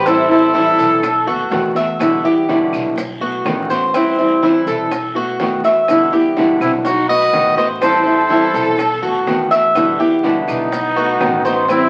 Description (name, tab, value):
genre	latin, Cuban son and guajira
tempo	124 BPM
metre	4/4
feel	straight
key	unclear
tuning	A4 = 440 Hz
part	warm trumpet	melody	0.0-1.7, 6.6-11.9 s	D#4 to D#5	-19 LUFS	equal	none
part	rich studio violin section	second line	0.0-1.0, 6.6-11.9 s	B3 to B4	-24 LUFS	equal	none
part	nylon-string guitar	accompaniment	0.0-11.9 s	B2 to F#4	-19 LUFS	equal	none
part	Cuban tres	arpeggios	0.0-11.9 s	C4 to E5	-20 LUFS	equal	none
part	upright bass	bass	0.0-11.9 s	A1 to E2	-34 LUFS	equal	none
part	bongos	percussion	0.1-11.9 s	none	-31 LUFS	equal	none
part	claves	percussion	0.1-11.9 s	none	-37 LUFS	equal	none
part	guiro	percussion	0.1-11.9 s	none	-36 LUFS	equal	none
part	maracas	percussion	0.1-11.9 s	none	-45 LUFS	equal	none
room	wet club reverb, RT60 0.8 s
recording	very old 78 rpm record, vinyl crackle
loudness	-15 LUFS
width	mono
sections	0.0-11.9 A section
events	none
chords	0.1 Am7; 1.0 B7; 2.0 Em7; 3.0 B7; 3.9 Am7; 4.9 B7; 5.9 Em7; 6.9 B7; 7.8 Am7; 8.8 B7; 9.8 Em7; 10.7 B7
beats	| 0.06 0.55 1.03 1.52 | 2.00 2.49 2.97 3.46 | 3.94 4.43 4.92 5.40 | 5.88 6.37 6.85 7.34 | 7.82 8.30 8.79 9.27 | 9.76 10.24 10.72 11.21 | 11.69